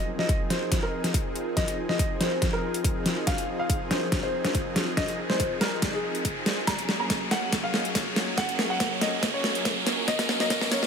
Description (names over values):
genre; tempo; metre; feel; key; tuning
heavy wobble dubstep; 141 BPM; 4/4; half-time; F phrygian; A4 = 441 Hz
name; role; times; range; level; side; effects
warm baby grand piano; melody; 0.0-10.9 s; Ab4 to Bb5; -31 LUFS; left 1 dB; digital delay
supersaw pad; sustained chords; 0.0-10.9 s; F3 to Bb4; -33 LUFS; right 1 dB; sidechain pumping
riser; sound effects; 2.1-10.9 s; none; -33 LUFS; right 1 dB; none
warbly tape-like pad; texture; 0.0-10.9 s; Gb3 to Eb5; -37 LUFS; left 1 dB; chorus, built-in reverb, phaser, sidechain pumping
dubstep drum kit; drums; 0.2-10.9 s; hi-hat, snare drum; -28 LUFS; equal; overdrive
electronic kick drum; drums; 0.3-10.6 s; none; -29 LUFS; equal; overdrive
room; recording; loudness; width
light reverb, digital ambience; high-pass filter; -24 LUFS; side -6 dB against mid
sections
0.0-10.9 A section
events
build-up 0.0-10.9; drum fill 0.0-10.9; filter sweep 0.0-10.9; riser 2.1-10.9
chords
0.0 Fm7; 6.7 Gbadd9